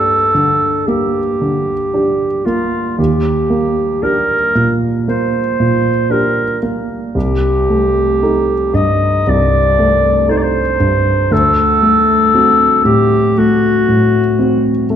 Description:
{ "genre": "classical, romantic duo for clarinet and grand piano", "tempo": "57 BPM", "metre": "4/4", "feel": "rubato", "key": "G minor", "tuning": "A4 = 441 Hz", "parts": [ { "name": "warm clarinet", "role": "melody", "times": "0.0-14.9 s", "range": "F4 to Eb5", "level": "-14 LUFS", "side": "left 1 dB", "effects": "none" }, { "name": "dark grand piano", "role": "accompaniment", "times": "0.0-15.0 s", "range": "C2 to A4", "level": "-14 LUFS", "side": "right 1 dB", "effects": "none" } ], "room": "wet scoring stage reverb, RT60 1.8 s", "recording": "dark, warm production", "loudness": "-11 LUFS", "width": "side -9 dB against mid", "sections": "0.0-15.0 A section", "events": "none", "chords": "0.0 Gm; 3.0 Ebmaj7; 7.2 Am7b5/C; 11.3 D7" }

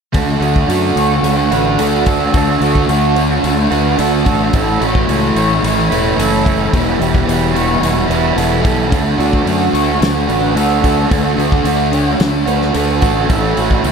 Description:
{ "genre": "rock, shoegaze and dream pop", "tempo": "110 BPM", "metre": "4/4", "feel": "straight", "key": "D major", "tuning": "A4 = 435 Hz", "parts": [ { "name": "electric guitar through a small old amp", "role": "arpeggios", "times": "0.1-13.9 s", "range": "F#4 to C#5", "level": "-21 LUFS", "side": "left 1 dB", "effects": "analog chorus, slapback echo" }, { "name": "overdriven semi-hollow guitar", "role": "riff", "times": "0.1-13.9 s", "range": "E2 to F#4", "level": "-16 LUFS", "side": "right 11 dB", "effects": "reverse reverb" }, { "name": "thick fuzz guitar", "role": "riff", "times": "0.1-13.9 s", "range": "E2 to D4", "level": "-18 LUFS", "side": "left 12 dB", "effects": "distortion, lush chorus" }, { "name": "growling fingered electric bass", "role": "bass", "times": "0.1-13.9 s", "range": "E1 to F#2", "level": "-19 LUFS", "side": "equal", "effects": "overdrive" }, { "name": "loose indie drum kit", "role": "drums", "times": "0.1-13.9 s", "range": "hi-hat, kick drum, snare drum", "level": "-20 LUFS", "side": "equal", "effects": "none" } ], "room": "moderate huge ambient reverb, RT60 3.9 s", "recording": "none", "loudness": "-12 LUFS", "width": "side -6 dB against mid", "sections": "0.1-13.9 A section", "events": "none", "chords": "0.1 D; 4.5 A; 6.7 Em; 8.9 D; 13.3 A" }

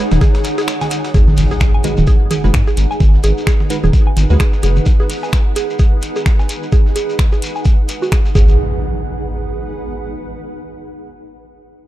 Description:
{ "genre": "minimal techno", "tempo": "129 BPM", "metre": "4/4", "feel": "swing 58% on 16ths", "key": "G# minor", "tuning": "A4 = 438 Hz", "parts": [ { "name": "mallet-like synth pluck", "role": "riff", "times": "0.0-8.6 s", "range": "F#4 to G#5", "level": "-24 LUFS", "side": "right 1 dB", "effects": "chorus, sidechain pumping, tape echo" }, { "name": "wavetable chord stab", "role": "stabs", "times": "0.0-4.4 s", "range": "G#3 to B4", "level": "-25 LUFS", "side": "right 2 dB", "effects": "ping-pong delay" }, { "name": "granular cloud pad", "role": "texture", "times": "0.0-10.4 s", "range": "D#4 to F#5", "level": "-24 LUFS", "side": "right 1 dB", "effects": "built-in reverb, sidechain pumping" }, { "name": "rubbery square bass", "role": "bass", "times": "0.1-4.8, 8.4-8.6 s", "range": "D#1 to G#2", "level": "-13 LUFS", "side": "equal", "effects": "tube saturation, sidechain pumping" }, { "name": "dusty soul sampler-style drum kit", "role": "drums", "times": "0.1-8.3 s", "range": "hi-hat, snare drum", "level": "-35 LUFS", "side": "right 1 dB", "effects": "none" }, { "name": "electronic toms and congas", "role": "percussion", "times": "0.1-4.8 s", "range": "none", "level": "-21 LUFS", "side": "right 2 dB", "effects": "overdrive, ping-pong delay" }, { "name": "shekere", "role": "percussion", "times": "0.1-8.6 s", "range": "none", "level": "-30 LUFS", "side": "left 2 dB", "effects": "none" }, { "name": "electronic kick drum", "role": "drums", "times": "0.2-8.5 s", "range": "none", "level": "-12 LUFS", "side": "equal", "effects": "none" }, { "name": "garage drum kit", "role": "drums", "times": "0.4-8.2 s", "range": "finger snaps, hi-hat", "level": "-25 LUFS", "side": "equal", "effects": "none" }, { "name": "impact", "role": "sound effects", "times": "1.1-3.0, 8.4-10.2 s", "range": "none", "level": "-22 LUFS", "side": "equal", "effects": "none" } ], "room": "digital ambience", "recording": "dark, warm production", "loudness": "-12 LUFS", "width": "side -15 dB against mid", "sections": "0.0-1.1 A section; 1.1-8.6 B section; 8.6-10.4 C section", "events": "drop 0.0-1.1; break 0.7-1.1; impact 1.1-3.0; filter sweep on synth arpeggio sound 1.1-8.6", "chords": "0.0 G#7(no3); 1.1 G#m7; 8.4 G#5; 8.6 G#m7" }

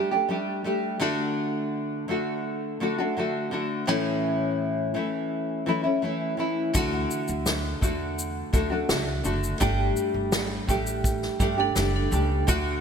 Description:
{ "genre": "acoustic pop", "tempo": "84 BPM", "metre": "4/4", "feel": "straight", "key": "D major", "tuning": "A4 = 440 Hz", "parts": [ { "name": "nylon-string guitar", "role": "accompaniment", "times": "0.0-12.8 s", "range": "A2 to G4", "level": "-25 LUFS", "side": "equal", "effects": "wide subtle chorus" }, { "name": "upright bass", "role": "bass", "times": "6.7-12.8 s", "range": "F#1 to E2", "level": "-29 LUFS", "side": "equal", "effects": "none" }, { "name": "unplugged drum kit", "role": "drums", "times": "6.7-12.6 s", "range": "kick drum, shaker, snare drum", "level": "-28 LUFS", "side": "equal", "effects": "none" }, { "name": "vibraphone with hard mallets", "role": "second line", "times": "11.4-12.5 s", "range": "D4 to A4", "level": "-32 LUFS", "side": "right 4 dB", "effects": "ping-pong delay" } ], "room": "moderate lush hall reverb, RT60 2.8 s", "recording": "bright 1980s-style digital production", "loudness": "-24 LUFS", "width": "side -6 dB against mid", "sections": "0.0-12.8 A section", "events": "none", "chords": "0.0 Gsus2; 1.0 D; 3.9 A; 6.7 D; 9.6 Gsus2" }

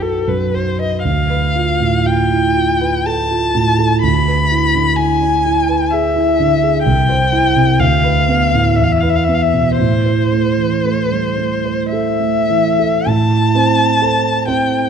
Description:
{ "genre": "classical, romantic duo for violin and grand piano", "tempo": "49-66 BPM", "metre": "3/4", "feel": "rubato", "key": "A minor", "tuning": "A4 = 442 Hz", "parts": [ { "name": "dark violin", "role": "melody", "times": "0.0-14.9 s", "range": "A4 to B5", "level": "-16 LUFS", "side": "left 4 dB", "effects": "none" }, { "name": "dark concert grand piano", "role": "accompaniment", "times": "0.0-14.9 s", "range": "B1 to C5", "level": "-14 LUFS", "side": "right 3 dB", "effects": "none" } ], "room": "moderate scoring stage reverb, RT60 1.8 s", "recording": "dark, warm production", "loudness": "-12 LUFS", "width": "side -7 dB against mid", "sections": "0.0-13.1 A section; 13.1-14.9 B section", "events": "none", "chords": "0.0 B; 1.1 Bm7b5/D; 4.0 E7/D; 6.8 C; 7.8 Bm7b5/D; 8.8 E5; 9.8 Am" }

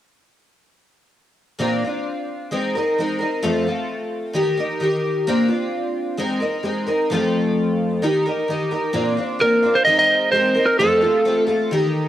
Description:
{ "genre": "rock", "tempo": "130 BPM", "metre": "4/4", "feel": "straight", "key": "unclear", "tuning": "A4 = 439 Hz", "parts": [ { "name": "picked twelve-string acoustic guitar", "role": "accompaniment", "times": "1.6-12.1 s", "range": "F2 to Bb4", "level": "-19 LUFS", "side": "left 1 dB", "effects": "analog chorus, cassette tape" }, { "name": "lightly driven lead guitar", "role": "melody", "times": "9.4-11.4 s", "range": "A4 to Eb5", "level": "-16 LUFS", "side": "right 1 dB", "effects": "analog delay" } ], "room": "light reverb, small room ambience", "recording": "home recording on cassette", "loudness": "-17 LUFS", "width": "side -12 dB against mid", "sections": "1.6-8.9 A section; 8.9-12.1 B section", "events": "none", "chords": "1.6 Bbadd9; 2.5 Abadd9; 3.4 F; 4.3 Eb; 5.3 Bbadd9; 6.2 Abadd9; 7.1 F; 8.0 Eb; 8.9 Bbadd9; 9.9 Abadd9; 10.8 F" }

